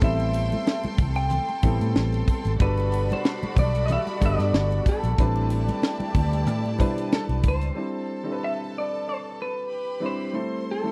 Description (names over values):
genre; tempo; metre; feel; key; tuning
lush 1970s-style soul; 93 BPM; 4/4; swing 54% on 16ths; A dorian; A4 = 444 Hz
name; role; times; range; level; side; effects
electric guitar through a small old amp; melody; 0.0-10.9 s; A4 to G5; -32 LUFS; equal; spring reverb
rich studio violin section; second line; 0.0-10.9 s; E4 to C6; -39 LUFS; equal; none
clear grand piano; accompaniment; 0.0-10.9 s; B2 to C5; -33 LUFS; equal; none
dark studio string section; sustained chords; 0.0-7.7 s; C3 to D5; -38 LUFS; equal; none
vintage muted fingered electric bass; bass; 0.0-7.7 s; G1 to B2; -27 LUFS; equal; none
tight funk drum kit; drums; 0.0-7.8 s; hi-hat, kick drum, snare drum; -24 LUFS; equal; none
triangle; percussion; 0.0-7.8 s; none; -57 LUFS; equal; none
congas; percussion; 0.5-7.4 s; none; -36 LUFS; equal; none
room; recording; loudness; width
little or no reverb; dry, close 1970s-style studio recording; -25 LUFS; mono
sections
0.0-7.8 A section; 7.8-10.9 B section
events
none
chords
0.0 Am7; 2.6 Gmaj9; 5.2 Am11; 7.8 Cmaj7; 10.3 Am7